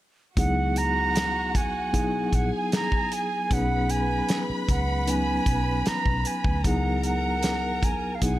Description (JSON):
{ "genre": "lush 1970s-style soul", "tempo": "76 BPM", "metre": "4/4", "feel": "straight", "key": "C# dorian", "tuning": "A4 = 438 Hz", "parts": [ { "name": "concert flute", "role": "melody", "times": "0.4-8.4 s", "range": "E#5 to A#5", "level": "-28 LUFS", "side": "right 3 dB", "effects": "none" }, { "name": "warm studio violin section", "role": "second line", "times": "0.4-8.4 s", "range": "F#4 to B5", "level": "-34 LUFS", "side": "equal", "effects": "none" }, { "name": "reed electric piano", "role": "accompaniment", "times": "0.4-8.4 s", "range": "F#3 to B4", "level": "-28 LUFS", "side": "left 2 dB", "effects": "fast tremolo" }, { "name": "vintage muted fingered electric bass", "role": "bass", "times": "0.4-8.4 s", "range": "A#1 to D2", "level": "-29 LUFS", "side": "equal", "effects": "none" }, { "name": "warm soul drum kit", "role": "drums", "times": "0.4-8.4 s", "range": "hi-hat, kick drum, snare drum", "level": "-26 LUFS", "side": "equal", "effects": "none" } ], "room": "light reverb, small room ambience", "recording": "none", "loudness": "-22 LUFS", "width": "side -15 dB against mid", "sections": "0.4-8.4 A section", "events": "none", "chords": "0.4 C#m11; 3.5 B6; 6.6 C#m11", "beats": "| 0.37 1.15 1.93 2.72 | 3.50 4.29 5.08 5.86 | 6.65 7.43 8.22" }